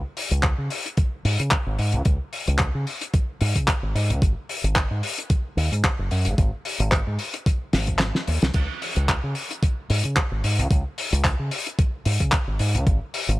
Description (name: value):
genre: nu-disco, nu disco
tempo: 111 BPM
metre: 4/4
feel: swing 54% on 16ths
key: unclear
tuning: A4 = 440 Hz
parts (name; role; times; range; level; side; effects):
- damped 70s drum kit; drums; 0.2-13.4 s; crash cymbal, handclaps, hi-hat, snare drum; -25 LUFS; left 1 dB; none
- fingered electric bass with an envelope filter; bass; 0.3-13.4 s; Gb1 to Db3; -23 LUFS; equal; none
- electronic kick drum; drums; 0.4-13.0 s; none; -21 LUFS; equal; overdrive
room: little or no reverb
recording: none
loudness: -21 LUFS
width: side -18 dB against mid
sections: 0.0-13.4 A section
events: drum fill 7.7-8.5; kick drops out 8.0-8.5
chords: none